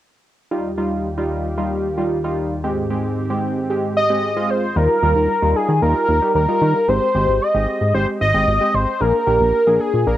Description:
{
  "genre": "synth-pop",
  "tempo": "113 BPM",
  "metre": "4/4",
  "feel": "straight",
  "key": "Eb major",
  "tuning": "A4 = 439 Hz",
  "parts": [
    { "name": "warm analog keys", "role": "accompaniment", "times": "0.5-10.2 s", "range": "G3 to Ab4", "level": "-23 LUFS", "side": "right 1 dB", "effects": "chorus, cassette tape, plate reverb" },
    { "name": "warm analog pad", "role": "sustained chords", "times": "0.5-4.7 s", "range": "Eb2 to G4", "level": "-25 LUFS", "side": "equal", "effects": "chorus, cassette tape, plate reverb" },
    { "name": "octave-doubled lead", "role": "melody", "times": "4.0-10.2 s", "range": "Ab4 to Eb5", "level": "-17 LUFS", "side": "equal", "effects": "chorus, phaser, cassette tape, plate reverb" },
    { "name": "chorused synth bass", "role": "bass", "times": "4.8-10.2 s", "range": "Ab1 to Eb3", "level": "-19 LUFS", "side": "equal", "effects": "none" }
  ],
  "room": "wet studio ambience, RT60 0.5 s",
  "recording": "home recording on cassette",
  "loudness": "-16 LUFS",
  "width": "side -13 dB against mid",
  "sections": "0.5-4.8 A section; 4.8-10.2 B section",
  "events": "none",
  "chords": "0.5 Ebadd9; 2.6 Abmaj7; 4.8 Ebadd9; 6.9 Abmaj7; 9.0 Bb7"
}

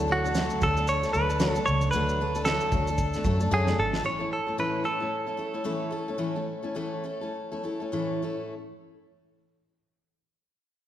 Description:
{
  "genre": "acoustic pop",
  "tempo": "96-115 BPM",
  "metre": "4/4",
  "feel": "swing 60% on 16ths",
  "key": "A major",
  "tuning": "A4 = 440 Hz",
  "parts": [
    { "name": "picked steel-string acoustic guitar", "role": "accompaniment", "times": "0.0-8.5 s", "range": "A2 to A4", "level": "-30 LUFS", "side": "left 2 dB", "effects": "none" },
    { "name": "vintage muted fingered electric bass", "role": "bass", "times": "0.0-4.0 s", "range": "G#1 to F#2", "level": "-28 LUFS", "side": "equal", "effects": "none" },
    { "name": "direct-recorded clean electric guitar", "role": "melody", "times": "0.1-7.9 s", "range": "F#4 to C#5", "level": "-28 LUFS", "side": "right 1 dB", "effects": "none" },
    { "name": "cloth-damped thuddy drum kit", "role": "drums", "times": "0.3-4.0 s", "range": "kick drum, shaker, snare drum", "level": "-32 LUFS", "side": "right 2 dB", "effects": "none" }
  ],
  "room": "moderate scoring stage reverb, RT60 1.6 s",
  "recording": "recorded in a church or concert hall",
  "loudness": "-25 LUFS",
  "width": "side -11 dB against mid",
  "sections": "0.0-4.0 A section; 4.0-8.5 B section",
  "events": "drum fill 3.5-4.0; slowing down 4.0-8.5",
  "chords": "0.0 D; 4.0 A"
}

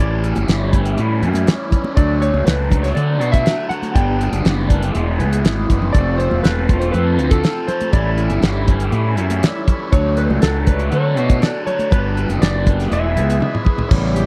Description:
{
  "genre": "psychedelic rock",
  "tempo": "120 BPM",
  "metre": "4/4",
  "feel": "straight",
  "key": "A mixolydian",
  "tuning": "A4 = 440 Hz",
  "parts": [
    { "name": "clean lap steel guitar", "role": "melody", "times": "0.0-13.6 s", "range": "A4 to G5", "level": "-25 LUFS", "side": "equal", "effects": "slapback echo" },
    { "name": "raw garage guitar", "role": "riff", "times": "0.0-14.2 s", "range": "G2 to A4", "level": "-25 LUFS", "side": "equal", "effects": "overdrive, phaser" },
    { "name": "fuzz fingered electric bass", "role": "bass", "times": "0.0-14.3 s", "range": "E1 to D3", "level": "-21 LUFS", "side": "equal", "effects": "overdrive" },
    { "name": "damped 70s drum kit", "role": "drums", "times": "0.2-14.3 s", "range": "crash cymbal, hi-hat, kick drum, snare drum, toms", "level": "-18 LUFS", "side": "equal", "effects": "none" },
    { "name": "congas", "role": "percussion", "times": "0.4-14.3 s", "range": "none", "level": "-30 LUFS", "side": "equal", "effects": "none" },
    { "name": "bright tonewheel organ", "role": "sustained chords", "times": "5.9-14.3 s", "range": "C#3 to E5", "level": "-31 LUFS", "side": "equal", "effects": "slow rotary speaker" }
  ],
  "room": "little or no reverb",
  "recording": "dry, close 1970s-style studio recording",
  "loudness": "-17 LUFS",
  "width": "mono",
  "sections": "0.0-13.9 A section",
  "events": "drum fill 5.6-5.9, 13.4-13.9",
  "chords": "0.0 A7sus4; 2.0 Dmaj7; 4.0 Gmaj7; 4.9 E; 5.9 Fmaj7; 7.9 A7sus4; 9.9 Dmaj7; 11.9 Gmaj7; 12.9 E"
}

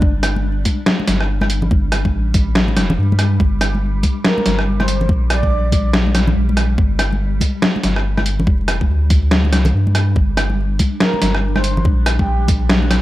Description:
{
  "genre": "deep dubstep",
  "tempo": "142 BPM",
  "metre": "4/4",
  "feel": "swing 61% on 16ths, half-time",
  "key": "G minor",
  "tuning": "A4 = 443 Hz",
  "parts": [
    { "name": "breathy flute-like synth lead", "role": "melody", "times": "0.0-0.1, 4.2-5.9, 11.0-12.5 s", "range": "G4 to D5", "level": "-25 LUFS", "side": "right 2 dB", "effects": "analog chorus, dub echo" },
    { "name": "granular cloud pad", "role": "sustained chords", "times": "0.0-13.0 s", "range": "G3 to D4", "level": "-26 LUFS", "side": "equal", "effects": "built-in reverb" },
    { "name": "soft dub sub bass", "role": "bass", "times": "0.0-13.0 s", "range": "F1 to G2", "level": "-17 LUFS", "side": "equal", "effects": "none" },
    { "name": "electronic kick drum", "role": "drums", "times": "0.0-12.6 s", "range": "none", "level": "-16 LUFS", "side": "equal", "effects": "overdrive" },
    { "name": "congas", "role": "percussion", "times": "0.0-12.9 s", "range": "none", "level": "-24 LUFS", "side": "left 2 dB", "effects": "none" },
    { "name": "trip hop sampler-style drum kit", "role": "drums", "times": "0.2-13.0 s", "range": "hi-hat, rim click, snare drum", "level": "-18 LUFS", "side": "equal", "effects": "overdrive" }
  ],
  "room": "little or no reverb",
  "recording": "vinyl crackle",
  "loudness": "-14 LUFS",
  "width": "side -16 dB against mid",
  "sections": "0.0-13.0 A section",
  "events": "none",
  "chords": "0.0 G5"
}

